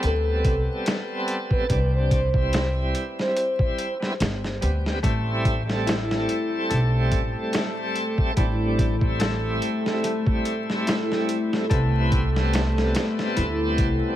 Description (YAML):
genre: trip hop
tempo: 72 BPM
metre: 4/4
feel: swing 55% on 16ths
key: A minor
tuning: A4 = 440 Hz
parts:
  - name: bright tonewheel organ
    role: accompaniment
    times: 0.0-14.2 s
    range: G3 to A4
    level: -28 LUFS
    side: equal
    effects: overdrive, slow rotary speaker, tremolo, tape echo
  - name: upright bass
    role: bass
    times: 0.0-14.0 s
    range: G1 to D2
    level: -24 LUFS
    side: equal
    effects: none
  - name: dusty soul sampler-style drum kit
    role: drums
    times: 0.0-14.0 s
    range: hi-hat, kick drum, snare drum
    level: -25 LUFS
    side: equal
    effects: none
  - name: pure breathy sine lead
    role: melody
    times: 0.1-3.9 s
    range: A4 to C5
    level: -28 LUFS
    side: equal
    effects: chorus, tape echo
  - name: dark analog pad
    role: sustained chords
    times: 6.1-14.2 s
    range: A3 to A4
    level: -29 LUFS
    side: equal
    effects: chorus, vintage 12-bit sampler grit
  - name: concert harp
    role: arpeggios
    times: 5.0-14.2 s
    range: A3 to A4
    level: -30 LUFS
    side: left 3 dB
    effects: tape echo
room: light reverb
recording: vinyl crackle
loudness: -21 LUFS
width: side -12 dB against mid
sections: 0.0-14.2 A section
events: none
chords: 0.0 Cmaj7; 5.0 Am7; 11.7 Cmaj7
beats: 0.03 0.87 | 1.70 2.53 3.37 4.20 | 5.03 5.87 6.70 7.53 | 8.37 9.20 10.03 10.87 | 11.70 12.53 13.37